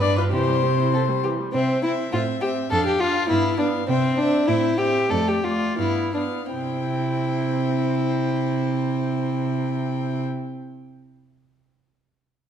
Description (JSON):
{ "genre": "quick classical-period movement for string quartet", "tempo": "80-104 BPM", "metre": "2/4", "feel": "rubato", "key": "C major", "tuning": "A4 = 440 Hz", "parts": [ { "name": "warm violin", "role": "melody", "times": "0.0-10.2 s", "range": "B4 to G5", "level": "-29 LUFS", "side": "left 9 dB", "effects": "none" }, { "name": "rich violin", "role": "second line", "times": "0.0-10.2 s", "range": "C4 to B4", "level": "-24 LUFS", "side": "left 2 dB", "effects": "none" }, { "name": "dark viola", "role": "accompaniment", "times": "0.0-10.2 s", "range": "E3 to F4", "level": "-28 LUFS", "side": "right 3 dB", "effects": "none" }, { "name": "rich cello", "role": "bass", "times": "0.0-10.2 s", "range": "F2 to C3", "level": "-26 LUFS", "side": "right 4 dB", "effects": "none" } ], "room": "wet recital hall reverb, RT60 1.6 s", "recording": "dark, warm production", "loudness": "-20 LUFS", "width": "side -8 dB against mid", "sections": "0.0-1.5 A section; 1.5-6.5 B section; 6.5-9.5 C section", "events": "slowing down 3.3-6.5", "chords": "0.3 C; 2.1 Am; 2.7 Dm/F; 3.3 G7; 3.9 C; 4.5 Am; 5.1 Dm/F; 5.8 G7; 6.5 C" }